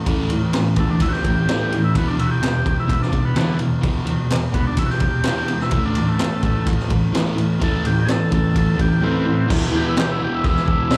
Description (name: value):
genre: garage rock duo or trio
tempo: 127 BPM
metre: 4/4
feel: straight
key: E minor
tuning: A4 = 440 Hz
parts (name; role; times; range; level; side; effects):
- fuzz guitar; riff; 0.0-11.0 s; E2 to A3; -22 LUFS; equal; distortion, slapback echo
- raw garage drum kit; drums; 0.1-11.0 s; crash cymbal, kick drum, ride cymbal, snare drum; -24 LUFS; equal; none
- group handclap; percussion; 0.5-11.0 s; none; -35 LUFS; equal; none
- combo organ; melody; 0.8-11.0 s; D3 to A4; -26 LUFS; equal; none
room: moderate club reverb, RT60 0.7 s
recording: live gig heard through the venue's PA, club reverb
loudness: -19 LUFS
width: mono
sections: 0.0-9.5 A section; 9.5-11.0 B section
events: none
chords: 0.0 A5; 2.0 Em; 5.7 A5; 9.5 E5